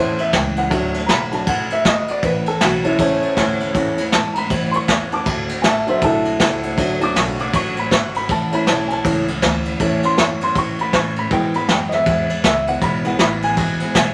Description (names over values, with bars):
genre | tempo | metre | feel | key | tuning
rockabilly | 159 BPM | 4/4 | swing 61% on 8ths | A major | A4 = 440 Hz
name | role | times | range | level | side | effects
picked steel-string acoustic guitar | accompaniment | 0.0-14.1 s | E2 to F#4 | -28 LUFS | equal | none
warm upright piano | accompaniment | 0.0-14.1 s | E3 to D6 | -22 LUFS | equal | none
upright bass | bass | 0.0-14.1 s | G#1 to A2 | -31 LUFS | equal | none
vintage brush drum kit | drums | 0.2-14.1 s | kick drum, ride cymbal, snare drum | -21 LUFS | equal | none
room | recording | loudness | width
moderate studio reverb, RT60 0.7 s | none | -18 LUFS | mono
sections
0.0-14.1 A section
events
upright piano solo 0.0-14.1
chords
0.0 A; 0.7 D; 2.2 A; 5.3 D; 8.3 A; 11.3 E